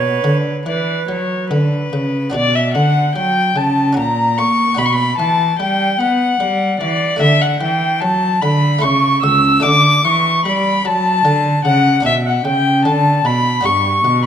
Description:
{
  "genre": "classical, baroque-style sonata movement with continuo",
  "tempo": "74 BPM",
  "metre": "3/4",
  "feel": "straight",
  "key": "B minor",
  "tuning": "A4 = 439 Hz",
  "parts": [
    { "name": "dark violin", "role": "melody", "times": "0.0-14.2 s", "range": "B4 to E6", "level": "-16 LUFS", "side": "left 6 dB", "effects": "none" },
    { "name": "bright baroque flute", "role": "second line", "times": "0.0-14.3 s", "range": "B4 to E6", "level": "-20 LUFS", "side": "right 6 dB", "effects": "none" },
    { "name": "buff-stop harpsichord", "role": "accompaniment", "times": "0.0-14.3 s", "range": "C#2 to A4", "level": "-22 LUFS", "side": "equal", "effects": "none" },
    { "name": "rich cello", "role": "bass", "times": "0.0-14.3 s", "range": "C#2 to B3", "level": "-18 LUFS", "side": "right 1 dB", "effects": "none" }
  ],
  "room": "wet recital hall reverb, RT60 1.6 s",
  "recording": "none",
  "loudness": "-13 LUFS",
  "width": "side -8 dB against mid",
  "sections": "0.0-2.3 A section; 2.3-14.3 B section",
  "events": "none",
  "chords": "0.0 Bm; 4.0 F#/A#; 4.8 Bm; 7.2 D; 8.8 A/C#; 9.6 D; 12.1 Bm; 13.7 G"
}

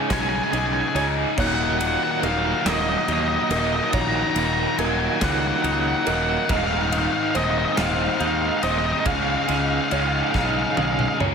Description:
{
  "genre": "post-rock",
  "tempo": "47 BPM (dotted quarters)",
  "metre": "6/8",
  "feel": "straight",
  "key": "Eb minor",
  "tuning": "A4 = 444 Hz",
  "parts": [
    { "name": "clean electric guitar", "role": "arpeggios", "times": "0.0-11.3 s", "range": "Eb2 to Ab4", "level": "-31 LUFS", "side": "left 4 dB", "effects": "slapback echo" },
    { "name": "felt-muted upright piano", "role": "arpeggios", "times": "0.0-11.3 s", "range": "Bb4 to F5", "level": "-34 LUFS", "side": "right 6 dB", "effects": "slapback echo" },
    { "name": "distorted electric guitar", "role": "riff", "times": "0.0-11.3 s", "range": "Eb2 to Ab4", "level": "-27 LUFS", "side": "left 15 dB", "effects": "distortion" },
    { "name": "overdriven electric guitar", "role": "riff", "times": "0.0-11.3 s", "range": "Eb2 to Ab4", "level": "-27 LUFS", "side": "right 14 dB", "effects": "tremolo" },
    { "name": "octave-fuzz lead guitar", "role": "melody", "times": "0.1-11.2 s", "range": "Eb5 to Bb5", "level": "-25 LUFS", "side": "equal", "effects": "distortion, slapback echo" },
    { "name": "fuzz fingered electric bass", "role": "bass", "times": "0.1-11.3 s", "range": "Eb1 to Eb2", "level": "-27 LUFS", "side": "equal", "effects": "overdrive" },
    { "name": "big rock drum kit", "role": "drums", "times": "0.1-11.3 s", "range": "crash cymbal, kick drum, ride cymbal, snare drum, toms", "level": "-28 LUFS", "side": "left 1 dB", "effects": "none" }
  ],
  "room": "light reverb",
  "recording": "none",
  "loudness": "-19 LUFS",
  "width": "side -6 dB against mid",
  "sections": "0.0-11.3 A section",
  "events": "drum fill 10.3-11.3",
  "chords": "0.0 Dbsus2; 1.4 Ebm7; 6.5 Ab/Eb; 9.1 Dbadd9"
}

